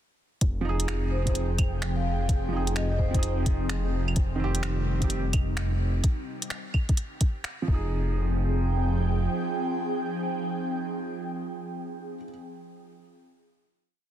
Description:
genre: future garage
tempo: 128 BPM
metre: 4/4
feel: swing 65% on 16ths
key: F minor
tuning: A4 = 440 Hz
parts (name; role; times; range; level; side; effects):
- airy breathy pad; sustained chords; 0.4-12.4 s; C3 to G5; -32 LUFS; right 1 dB; chorus, phaser, sidechain pumping
- dark detuned saw bass; bass; 0.4-9.3 s; F1; -27 LUFS; equal; sidechain pumping
- electronic kick drum; drums; 0.4-7.8 s; none; -24 LUFS; equal; none
- organic electronic drum kit; drums; 0.4-7.6 s; claves, finger snaps, hi-hat; -36 LUFS; right 1 dB; soft clipping on snare
- felt-muted upright piano; accompaniment; 0.6-12.3 s; Eb3 to Ab4; -35 LUFS; right 5 dB; sidechain pumping, dub echo
- vibraphone with medium mallets; melody; 1.1-3.2 s; C5 to F5; -37 LUFS; left 1 dB; tape echo
room: digital ambience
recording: dense, heavily limited modern master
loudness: -25 LUFS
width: side -11 dB against mid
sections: 0.4-7.9 groove; 7.9-11.7 final chord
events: none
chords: 0.4 Fm7; 4.2 Cm/F; 7.7 Fm7

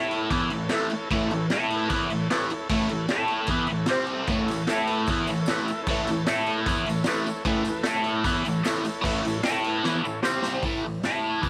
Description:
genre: garage rock duo or trio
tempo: 151 BPM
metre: 4/4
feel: straight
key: A mixolydian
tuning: A4 = 440 Hz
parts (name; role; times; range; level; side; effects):
- combo organ; sustained chords; 0.0-10.6 s; C4 to E5; -36 LUFS; equal; none
- overdriven electric guitar; riff; 0.0-11.5 s; A2 to A4; -27 LUFS; equal; phaser
- raw garage drum kit; drums; 0.1-11.5 s; crash cymbal, hi-hat, kick drum, snare drum; -33 LUFS; equal; none
- tambourine; percussion; 4.3-10.5 s; none; -47 LUFS; equal; none
room: light reverb, studio ambience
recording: none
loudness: -26 LUFS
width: mono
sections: 0.0-10.6 A section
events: drum fill 9.8-10.6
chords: 0.0 A; 3.9 C5; 4.3 A; 10.2 C5; 10.6 A5

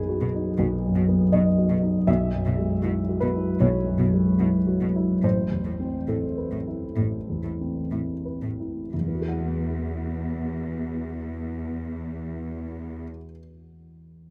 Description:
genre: cinematic, emotional film score for orchestra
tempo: 57-81 BPM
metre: 4/4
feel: rubato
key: E major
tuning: A4 = 438 Hz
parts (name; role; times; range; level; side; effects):
- dark baby grand piano; accompaniment; 0.0-14.3 s; A1 to F#5; -26 LUFS; equal; none
- rich symphonic cello section; bass; 0.2-13.0 s; E2 to B2; -32 LUFS; equal; none
room: wet cathedral reverb, RT60 5.6 s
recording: in a vast, echoing space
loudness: -25 LUFS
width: mono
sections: 0.0-8.9 A section; 8.9-12.8 B section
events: slowing down 0.6-8.9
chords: 0.0 B6; 2.1 Eadd9/B; 5.2 Amadd9; 8.9 Eadd9

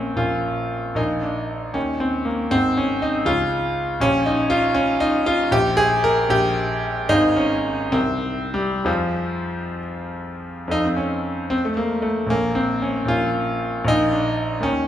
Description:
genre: classical, romantic character piece for solo piano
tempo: 62-81 BPM (dotted quarters)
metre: 6/8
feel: rubato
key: F minor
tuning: A4 = 438 Hz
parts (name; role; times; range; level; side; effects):
- clear grand piano; solo; 0.0-14.9 s; Ab1 to Ab5; -19 LUFS; equal; none
room: wet recital hall reverb, RT60 1.5 s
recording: none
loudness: -19 LUFS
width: side -10 dB against mid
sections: 0.0-10.7 A section; 10.7-14.9 A section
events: none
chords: 0.0 Bbm7; 1.0 Bb7; 1.8 Eb; 2.5 Ab5; 3.3 Db; 4.0 Gm7b5/Bb; 5.5 C7/Bb; 7.1 Fm/Ab; 7.9 C7; 8.9 Fm; 10.7 F7; 12.3 Bbm7; 13.9 Bb7

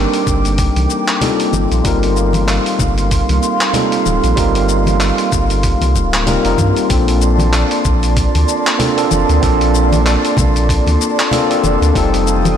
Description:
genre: sunset chillout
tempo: 95 BPM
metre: 4/4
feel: swing 57% on 16ths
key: unclear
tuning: A4 = 439 Hz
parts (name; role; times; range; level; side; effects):
- overdriven tine electric piano; accompaniment; 0.0-12.6 s; G3 to Bb4; -17 LUFS; moving between left 7 dB and right 7 dB; auto-pan, ping-pong delay
- airy breathy pad; sustained chords; 0.0-12.6 s; Bb3 to Eb6; -19 LUFS; right 1 dB; chorus
- warm sub bass; bass; 0.0-12.6 s; D1 to G2; -16 LUFS; equal; none
- dusty soul sampler-style drum kit; drums; 0.1-12.6 s; cabasa, handclaps, hi-hat; -21 LUFS; left 1 dB; small room reverb
- electronic kick drum; drums; 0.3-12.1 s; none; -19 LUFS; equal; small room reverb
- congas; percussion; 0.8-12.6 s; none; -22 LUFS; left 2 dB; none
room: light reverb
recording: blown-out, overdriven recording, overdrive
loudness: -12 LUFS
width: side -9 dB against mid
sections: 0.0-6.9 A section; 6.9-12.6 B section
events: none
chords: 0.0 Cm7; 6.9 Bbmaj9; 12.0 F9

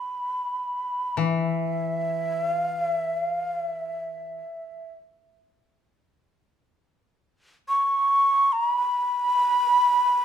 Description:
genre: japanese traditional, Japanese chamber music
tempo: free time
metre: none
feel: none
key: unclear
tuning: A4 = 440 Hz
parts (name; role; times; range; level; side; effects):
- breathy mellow shakuhachi; melody; 0.0-10.2 s; E5 to C#6; -22 LUFS; right 1 dB; none
- koto; accompaniment; 1.2-4.4 s; E3; -28 LUFS; left 7 dB; none
room: moderate recital hall reverb, RT60 1.4 s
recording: minimal, uncompressed stereo recording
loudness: -22 LUFS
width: side -9 dB against mid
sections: 0.0-6.0 A section; 6.0-10.2 A section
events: none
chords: none

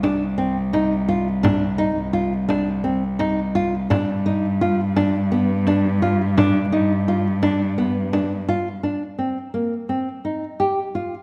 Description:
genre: contemporary instrumental, chamber music in an uneven meter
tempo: 170 BPM (eighths)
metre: 7/8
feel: straight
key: C minor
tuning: A4 = 440 Hz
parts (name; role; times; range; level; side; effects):
- nylon-string guitar; arpeggios; 0.0-11.1 s; Bb3 to G4; -24 LUFS; equal; none
- dark cello; bass; 0.0-8.8 s; C2 to G2; -24 LUFS; equal; none
- frame drum; percussion; 0.0-8.7 s; none; -29 LUFS; equal; none
room: moderate scoring stage reverb, RT60 1.6 s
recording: none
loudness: -21 LUFS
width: mono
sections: 0.0-8.8 A section; 8.8-11.2 B section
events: none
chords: 0.0 Cmadd9; 3.9 G5; 8.8 Cm7

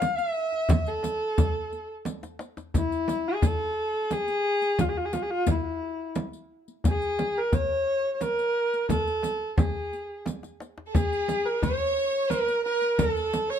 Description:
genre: Persian modal ensemble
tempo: 88 BPM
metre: 3/4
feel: straight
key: A dastgah chahargah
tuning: A4 = 436 Hz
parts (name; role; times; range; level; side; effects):
- rich kamancheh; melody; 0.0-13.6 s; E4 to F5+44c; -26 LUFS; equal; plate reverb
- frame drum; percussion; 0.0-13.5 s; none; -29 LUFS; right 3 dB; none
- riq; percussion; 0.0-13.5 s; none; -35 LUFS; left 4 dB; none
- tombak; percussion; 0.0-13.5 s; none; -29 LUFS; left 3 dB; none
- bright studio violin section; second line; 10.9-13.6 s; G#4 to C#5; -33 LUFS; right 1 dB; none
room: light reverb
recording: dark, warm production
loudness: -24 LUFS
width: side -9 dB against mid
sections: 0.0-2.7 A section; 2.7-13.6 B section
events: drum fill 2.1-2.7, 10.3-10.9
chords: none

